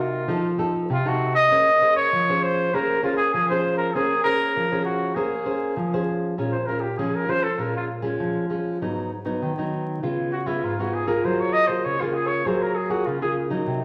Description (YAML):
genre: samba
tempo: 99 BPM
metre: 4/4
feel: straight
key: Bb minor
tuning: A4 = 440 Hz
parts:
  - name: warm trumpet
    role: melody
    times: 0.0-13.3 s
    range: E4 to Eb5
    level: -25 LUFS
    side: equal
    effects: none
  - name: nylon-string guitar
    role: accompaniment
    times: 0.0-13.8 s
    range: Ab2 to C5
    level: -26 LUFS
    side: equal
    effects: none
room: wet large studio reverb, RT60 1.2 s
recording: vinyl crackle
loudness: -23 LUFS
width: mono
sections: 0.0-6.4 A section; 6.4-13.8 B section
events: trumpet solo 6.4-13.8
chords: 0.3 F7; 1.5 Bbm9; 6.4 Bbm7; 8.8 Abm7; 10.0 Db7; 11.2 Gbmaj9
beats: 0.29 0.90 | 1.51 2.12 2.73 3.33 | 3.94 4.55 5.16 5.77 | 6.38 6.99 7.59 8.20 | 8.81 9.42 10.03 10.64 | 11.25 11.86 12.46 13.07 | 13.68